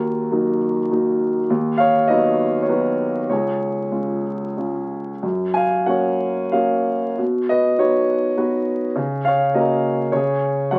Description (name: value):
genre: classical, lyrical solo piano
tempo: 90-103 BPM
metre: 3/4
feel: rubato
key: F# major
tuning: A4 = 440 Hz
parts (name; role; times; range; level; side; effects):
- dark grand piano; solo; 0.0-10.8 s; C#2 to G#5; -20 LUFS; equal; none
room: moderate studio reverb, RT60 0.6 s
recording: very old 78 rpm record, vinyl crackle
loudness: -20 LUFS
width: mono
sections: 0.0-10.8 A section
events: none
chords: 0.0 D#m; 1.5 B/D#; 3.3 C#; 5.2 F#; 7.2 B; 9.0 F#/C#; 10.1 C#5